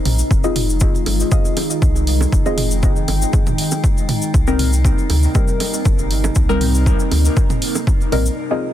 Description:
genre	dub techno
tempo	119 BPM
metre	4/4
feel	swing 53% on 16ths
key	unclear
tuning	A4 = 440 Hz
part	warbly tape-like pad	sustained chords	0.0-8.7 s	C3 to G5	-25 LUFS	left 1 dB	chorus, built-in reverb, phaser, sidechain pumping
part	deep mellow chord stab	stabs	0.0-8.7 s	G3 to Eb5	-23 LUFS	left 2 dB	chorus, phaser, sidechain pumping, dub echo
part	metallic inharmonic drone	texture	0.0-8.7 s	C4 to Eb4	-29 LUFS	right 4 dB	chorus, built-in reverb, sidechain pumping
part	pure sine sub bass	bass	0.1-8.3 s	F1 to D2	-18 LUFS	equal	sidechain pumping
part	electronic hi-hat	drums	0.1-8.2 s	none	-26 LUFS	right 1 dB	none
part	electronic toms and bongos	percussion	0.1-8.2 s	none	-27 LUFS	right 4 dB	sidechain pumping on perc, sidechain pumping on toms, dub echo
part	cabasa	percussion	0.2-8.4 s	none	-28 LUFS	left 3 dB	none
part	electronic kick drum	drums	0.3-8.0 s	none	-16 LUFS	equal	none
room	little or no reverb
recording	dense, heavily limited modern master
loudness	-14 LUFS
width	side -12 dB against mid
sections	0.0-8.4 A section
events	none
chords	0.3 Fm7; 4.3 Cm7

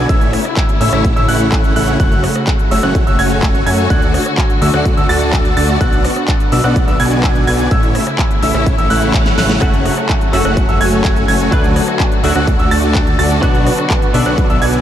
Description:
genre	EDM, festival progressive house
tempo	126 BPM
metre	4/4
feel	straight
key	F# minor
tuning	A4 = 439 Hz
part	warm studio string section	sustained chords	0.0-14.8 s	C#3 to F#4	-21 LUFS	left 1 dB	sidechain pumping
part	dark baby grand piano	arpeggios	0.0-14.8 s	E6 to A6	-20 LUFS	right 1 dB	sidechain pumping, diffuse ambient delay
part	dense compressed supersaw	riff	0.0-14.8 s	A3 to A5	-18 LUFS	equal	sidechain pumping, diffuse ambient delay
part	fat analog bass	bass	0.0-14.8 s	F#1 to F#2	-18 LUFS	equal	sidechain pumping
part	big-room dance drum kit	drums	0.1-14.8 s	handclaps, hi-hat, rim click, snare drum	-23 LUFS	equal	none
part	electronic kick drum	drums	0.1-14.5 s	none	-15 LUFS	equal	none
part	reverse cymbal	sound effects	8.9-9.6 s	none	-31 LUFS	right 4 dB	none
part	direct-recorded clean electric guitar	accompaniment	9.6-14.8 s	B2 to B4	-20 LUFS	left 2 dB	analog chorus, sidechain pumping, diffuse ambient delay
room	moderate huge ambient reverb, RT60 9.1 s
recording	dreamy mix soaked in reverb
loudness	-11 LUFS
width	side -10 dB against mid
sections	0.0-14.8 A section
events	reverse cymbal 8.9-9.6; drum fill 9.3-9.6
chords	0.1 A; 2.0 F#m; 3.9 D; 5.8 Bm; 7.7 A; 9.6 F#m; 11.5 D; 13.4 Bm

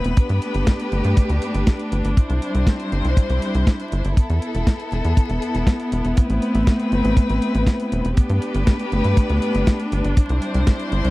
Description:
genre	italo disco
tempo	120 BPM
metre	4/4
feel	straight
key	unclear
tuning	A4 = 440 Hz
part	rich chamber string section	sustained chords	0.0-11.1 s	G3 to C5	-22 LUFS	left 1 dB	none
part	tight sequencer bass	bass	0.0-11.1 s	E1 to G2	-20 LUFS	equal	none
part	clean 12-bit digital drum machine	drums	0.0-11.1 s	hi-hat, snare drum	-26 LUFS	equal	none
part	kick drum	drums	0.2-10.8 s	none	-16 LUFS	equal	none
room	little or no reverb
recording	dry, close 1970s-style studio recording, vinyl crackle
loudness	-17 LUFS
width	side -19 dB against mid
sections	0.0-11.1 A section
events	none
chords	0.2 Gadd9; 2.2 Cadd9; 4.2 Esus4; 6.2 Amadd9; 8.2 Gadd9; 10.2 Cadd9

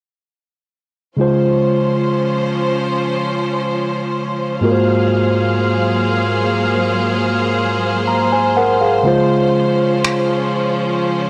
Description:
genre	contemporary R&B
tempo	61 BPM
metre	4/4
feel	straight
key	Db major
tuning	A4 = 440 Hz
part	mellow tine electric piano	accompaniment	1.2-11.3 s	Ab2 to Bb5	-18 LUFS	equal	none
part	clear studio string section	sustained chords	1.2-11.3 s	F3 to F5	-22 LUFS	equal	none
part	electronic finger snaps	drums	10.0-10.3 s	none	-23 LUFS	equal	vintage 12-bit sampler grit
room	small room ambience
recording	dry, gritty hardware recording, cassette tape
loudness	-16 LUFS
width	mono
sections	1.2-11.3 A section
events	none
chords	1.2 Dbmaj7; 4.6 Ab13; 9.1 Dbmaj7

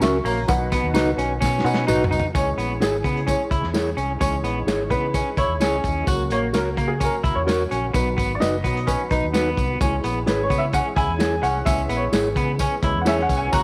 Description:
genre	uptempo 1960s-style soul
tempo	129 BPM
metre	4/4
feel	straight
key	C# dorian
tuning	A4 = 440 Hz
part	warm upright piano	accompaniment	0.0-13.6 s	B2 to C#6	-28 LUFS	equal	none
part	tonewheel organ	sustained chords	0.0-13.6 s	C#3 to G#4	-35 LUFS	equal	overdrive, chorus vibrato, slow rotary speaker
part	mellow electric guitar	stabs	0.0-13.2 s	C#4 to C#5	-29 LUFS	equal	spring reverb
part	vintage muted fingered electric bass	bass	0.0-13.6 s	F#1 to C#3	-29 LUFS	equal	none
part	crunchy breakbeat drum kit	drums	0.0-13.6 s	hi-hat, kick drum, snare drum, toms	-28 LUFS	equal	none
part	tambourine	percussion	0.0-13.6 s	none	-41 LUFS	equal	none
part	electric guitar through a small old amp	riff	0.2-13.6 s	A#3 to F#4	-28 LUFS	equal	none
room	light reverb, small room reverb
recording	none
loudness	-22 LUFS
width	mono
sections	0.0-2.3 A section; 2.3-13.6 B section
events	drum fill 1.4-2.3; upright piano solo 2.3-13.6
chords	0.5 B; 2.3 C#m; 6.1 F#; 7.9 B; 9.8 C#m

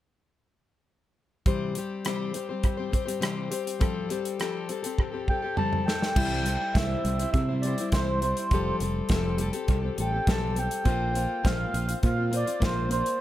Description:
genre	folk rock and heartland rock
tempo	102 BPM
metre	4/4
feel	straight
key	C major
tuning	A4 = 441 Hz
part	picked plugged-in steel-string acoustic guitar	accompaniment	1.5-13.2 s	C3 to C5	-30 LUFS	left 4 dB	tape echo
part	natural country drum kit	drums	1.5-13.2 s	crash cymbal, hi-hat, kick drum, rim click, snare drum, toms	-28 LUFS	right 1 dB	tape echo
part	mellow accordion	melody	5.3-13.2 s	C5 to A5	-30 LUFS	right 2 dB	tape echo
part	fingered electric bass	bass	6.2-13.0 s	F1 to C3	-29 LUFS	right 1 dB	none
room	little or no reverb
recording	echo-heavy mix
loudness	-25 LUFS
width	side -13 dB against mid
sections	1.5-6.2 A section; 6.2-13.2 B section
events	drum fill 5.0-6.2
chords	1.5 C; 3.8 Fadd9; 6.2 C; 8.5 Fadd9; 10.9 Bbsus2

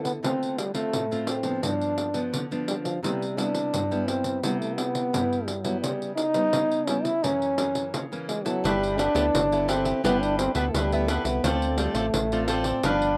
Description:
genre	samba and choro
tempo	86 BPM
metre	4/4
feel	straight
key	G major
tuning	A4 = 441 Hz
part	warm trombone	melody	0.0-13.2 s	F3 to E4	-28 LUFS	equal	none
part	nylon-string guitar	accompaniment	0.0-13.2 s	F#2 to A4	-33 LUFS	equal	none
part	pandeiro	percussion	0.1-13.2 s	none	-33 LUFS	equal	none
part	cavaquinho	accompaniment	8.6-13.2 s	D4 to F5	-32 LUFS	equal	none
part	round analog bass	bass	8.6-13.2 s	G1 to D2	-32 LUFS	equal	none
room	little or no reverb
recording	recorded outdoors, with no room sound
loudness	-26 LUFS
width	mono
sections	0.0-8.6 A section; 8.6-13.2 B section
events	none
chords	0.2 Dm7; 1.6 G7; 3.0 Cmaj7; 5.8 C#m7b5; 7.2 F#7; 8.6 G69; 11.4 Dm7

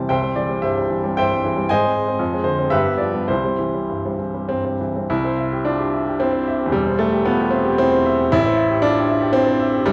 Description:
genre	classical, romantic character piece for solo piano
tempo	98-119 BPM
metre	3/4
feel	rubato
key	C major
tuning	A4 = 440 Hz
part	clear baby grand piano	solo	0.0-9.9 s	E1 to A5	-19 LUFS	equal	none
room	wet recital hall reverb, RT60 1.4 s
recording	worn, warbling old tape, cassette tape, warbly pitch drift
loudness	-19 LUFS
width	mono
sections	0.0-5.1 A section; 5.1-9.9 B section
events	none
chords	0.1 C; 1.7 Ab; 2.2 Dm7b5/F; 2.7 G7; 3.3 C; 6.7 C/E; 8.3 Am7

